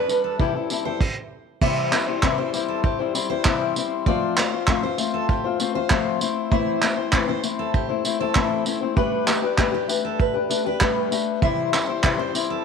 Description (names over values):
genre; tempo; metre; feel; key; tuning
acoustic pop; 98 BPM; 4/4; straight; C major; A4 = 440 Hz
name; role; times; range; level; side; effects
fingerpicked acoustic archtop guitar; accompaniment; 0.0-12.6 s; A2 to C5; -23 LUFS; left 9 dB; none
fingerpicked steel-string acoustic guitar; arpeggios; 0.0-12.6 s; G4 to E5; -29 LUFS; right 13 dB; none
vintage brush drum kit; drums; 0.1-12.5 s; crash cymbal, handclaps, kick drum, tambourine; -23 LUFS; right 3 dB; none
room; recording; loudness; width
moderate echo chamber reverb, RT60 1.7 s, small room ambience; 1960s-style stereo with parts hard left and right; -20 LUFS; side -6 dB against mid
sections
0.0-1.6 A section; 1.6-12.6 A section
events
none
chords
0.4 C6; 4.1 F; 6.2 Am; 9.0 Gadd9; 11.4 C